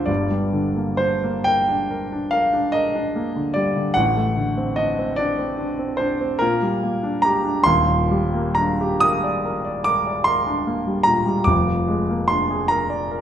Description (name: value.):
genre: classical, romantic nocturne for solo piano.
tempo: 47 BPM (dotted quarters).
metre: 9/8.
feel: uneven beats, rubato.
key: unclear.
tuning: A4 = 440 Hz.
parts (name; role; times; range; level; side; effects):
warm concert grand piano; solo; 0.0-13.2 s; Eb1 to Eb6; -18 LUFS; equal; none.
room: wet recital hall reverb, RT60 1.6 s.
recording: minimal, uncompressed stereo recording.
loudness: -18 LUFS.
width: side -9 dB against mid.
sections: 0.0-13.2 A section.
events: none.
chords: 0.1 Gm; 4.0 D7/A; 6.4 Gm/Bb; 7.7 Ebmaj7; 11.5 Bb7/F.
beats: | 0.09 1.49 2.76 | 3.97 5.19 6.42 | 7.65 9.02 10.28 | 11.47 12.71.